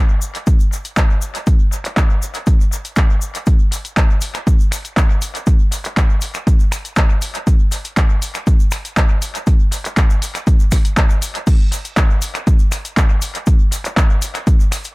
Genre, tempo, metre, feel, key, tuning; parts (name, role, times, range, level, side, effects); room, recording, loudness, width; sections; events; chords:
house; 120 BPM; 4/4; straight
cabasa; percussion; 0.2-14.9 s; -30 LUFS; left 5 dB; tape echo
punchy analog drum machine; drums; 0.3-14.9 s; crash cymbal, finger snaps, handclaps, hi-hat; -23 LUFS; equal; tape echo
electronic kick drum; drums; 0.5-14.6 s; -13 LUFS; equal
little or no reverb; echo-heavy mix; -14 LUFS; side -23 dB against mid
0.0-14.9 A section